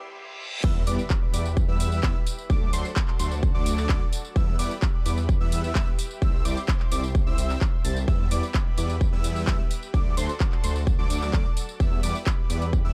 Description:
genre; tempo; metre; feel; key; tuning
EDM, festival progressive house; 129 BPM; 4/4; straight; E minor; A4 = 440 Hz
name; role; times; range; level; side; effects
bright grand piano; accompaniment; 0.0-0.7 s; G3 to G4; -52 LUFS; equal; sidechain pumping, digital delay
lush unison pad; sustained chords; 0.0-12.9 s; F#4 to C6; -42 LUFS; equal; chorus, sidechain pumping
reverse cymbal and impact; sound effects; 0.0-2.5 s; none; -39 LUFS; equal; none
unison lead; arpeggios; 0.6-12.9 s; C6 to A6; -38 LUFS; equal; analog chorus, sidechain pumping, digital delay
supersaw chords; riff; 0.6-12.9 s; F#3 to A5; -36 LUFS; equal; sidechain pumping, digital delay
detuned saw bass; bass; 0.6-12.9 s; C2 to E2; -31 LUFS; equal; chorus, sidechain pumping, high-pass filter
big-room dance drum kit; drums; 0.6-12.8 s; crash cymbal, handclaps, hi-hat, tambourine; -37 LUFS; equal; high-pass filter on hats, high-pass filter on cymbals, high-pass filter on perc, high-pass filter on snare, high-pass filter on room
electronic kick drum; drums; 0.6-12.8 s; none; -26 LUFS; equal; none
room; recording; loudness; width
little or no reverb; dark, warm production, high-pass filter; -25 LUFS; mono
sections
0.6-12.9 A section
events
break 0.0-0.6; reverse cymbal 0.0-0.6; drop 0.6-12.9; impact 0.6-2.5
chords
0.0 C; 0.6 Em; 2.5 D; 4.4 Em; 6.2 C; 8.1 Em; 9.9 D; 11.8 Em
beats
0.17 | 0.64 1.10 1.57 2.03 | 2.50 2.96 3.43 3.89 | 4.36 4.82 5.29 5.75 | 6.22 6.68 7.15 7.61 | 8.08 8.54 9.01 9.47 | 9.94 10.40 10.87 11.34 | 11.80 12.27 12.73

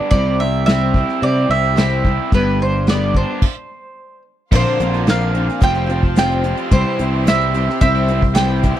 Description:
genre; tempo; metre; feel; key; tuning
folk rock and heartland rock; 109 BPM; 4/4; straight; C major, C mixolydian from 4.5 s; A4 = 440 Hz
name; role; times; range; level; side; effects
picked steel-string acoustic guitar; accompaniment; 0.0-8.8 s; G2 to Bb4; -22 LUFS; left 5 dB; none
raw garage guitar; riff; 0.0-8.8 s; G2 to F4; -24 LUFS; right 2 dB; overdrive
bowl-back mandolin; melody; 0.1-8.7 s; B4 to G5; -20 LUFS; right 3 dB; none
fingered electric bass; bass; 0.1-8.7 s; F1 to C3; -19 LUFS; equal; none
soft brush drum kit; drums; 0.1-8.8 s; crash cymbal, hi-hat, kick drum, snare drum; -16 LUFS; equal; none
clear baby grand piano; accompaniment; 4.5-8.6 s; C4 to C5; -29 LUFS; right 8 dB; none
dark studio string section; sustained chords; 4.5-8.8 s; G4 to C6; -32 LUFS; equal; none
room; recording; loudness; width
small room ambience; dry, close 1970s-style studio recording; -14 LUFS; side -12 dB against mid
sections
0.0-4.5 A section; 4.5-8.8 B section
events
stop 3.4-4.5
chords
0.1 C; 2.3 G; 3.4 N.C.; 4.5 Bbadd9; 5.6 Fsus2; 6.7 C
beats
| 0.12 0.67 1.22 1.77 | 2.32 2.87 3.42 3.98 | 4.53 5.07 5.62 6.17 | 6.72 7.27 7.82 8.37

